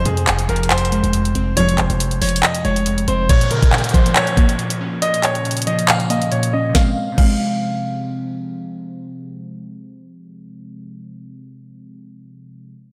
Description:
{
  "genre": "hip hop, trap",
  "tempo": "139 BPM",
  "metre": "4/4",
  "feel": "half-time",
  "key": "F minor",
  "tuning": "A4 = 440 Hz",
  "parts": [
    { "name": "clear grand piano", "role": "melody", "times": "0.0-8.0 s", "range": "Ab4 to F5", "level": "-24 LUFS", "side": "equal", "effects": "low-pass filter, analog delay" },
    { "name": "glassy digital keys", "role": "accompaniment", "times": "0.0-12.7 s", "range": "F2 to Db4", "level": "-25 LUFS", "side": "equal", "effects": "chorus, low-pass filter" },
    { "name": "muted symphonic string section", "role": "stabs", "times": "0.0-1.8 s", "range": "C2 to F3", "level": "-26 LUFS", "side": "equal", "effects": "none" },
    { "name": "hard-hitting 808-style bass", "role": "bass", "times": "0.0-3.3 s", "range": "F1 to F2", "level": "-24 LUFS", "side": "equal", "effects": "none" },
    { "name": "trap drum kit", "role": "drums", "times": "0.1-7.3 s", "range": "crash cymbal, handclaps, hi-hat, kick drum, snare drum", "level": "-20 LUFS", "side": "equal", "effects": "none" },
    { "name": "downlifter", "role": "sound effects", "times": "3.3-6.7 s", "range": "none", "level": "-31 LUFS", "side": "equal", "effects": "none" }
  ],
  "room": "moderate plate reverb, RT60 2.1 s",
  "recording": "dreamy mix soaked in reverb",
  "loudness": "-17 LUFS",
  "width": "mono",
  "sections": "0.0-3.3 A section; 3.3-6.7 B section; 6.7-10.2 C section",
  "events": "filter sweep 3.3-6.7; break 5.0-6.7",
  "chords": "0.0 Fm; 3.3 Bbm; 6.7 Fm",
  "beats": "0.27 0.70 1.14 | 1.57 2.00 2.43 2.86 | 3.29 3.73 4.16 4.59 | 5.02 5.45 5.88 6.32 | 6.75 7.18 7.61 8.04 | 8.47 8.91 9.34 9.77"
}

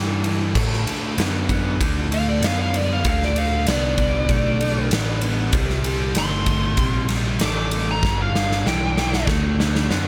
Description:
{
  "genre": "blues rock power trio and southern rock",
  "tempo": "96 BPM",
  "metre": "4/4",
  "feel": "straight",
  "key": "unclear",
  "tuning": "A4 = 440 Hz",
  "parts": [
    { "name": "overdriven electric guitar", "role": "riff", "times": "0.0-10.1 s", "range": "G2 to B3", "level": "-27 LUFS", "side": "equal", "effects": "none" },
    { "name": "overdriven picked electric bass", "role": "bass", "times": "0.0-10.1 s", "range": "G1 to A2", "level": "-26 LUFS", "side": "equal", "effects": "none" },
    { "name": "huge arena drum kit", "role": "drums", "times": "0.2-10.0 s", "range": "crash cymbal, kick drum, ride cymbal, snare drum", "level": "-25 LUFS", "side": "equal", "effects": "none" },
    { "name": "biting lead guitar", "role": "melody", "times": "2.1-9.3 s", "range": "D5 to D6", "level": "-29 LUFS", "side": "equal", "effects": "wah, overdrive, tape echo" }
  ],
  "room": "light reverb",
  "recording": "none",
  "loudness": "-21 LUFS",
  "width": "mono",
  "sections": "0.0-10.1 A section",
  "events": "lead electric guitar solo 0.0-10.1; drum fill 8.0-10.1",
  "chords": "0.0 N.C.; 0.6 D7; 5.5 C5; 8.0 G; 9.3 D",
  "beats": "| 0.55 1.18 1.80 2.43 | 3.05 3.68 4.30 4.92 | 5.54 6.17 6.79 7.41 | 8.03 8.65 9.28 9.90"
}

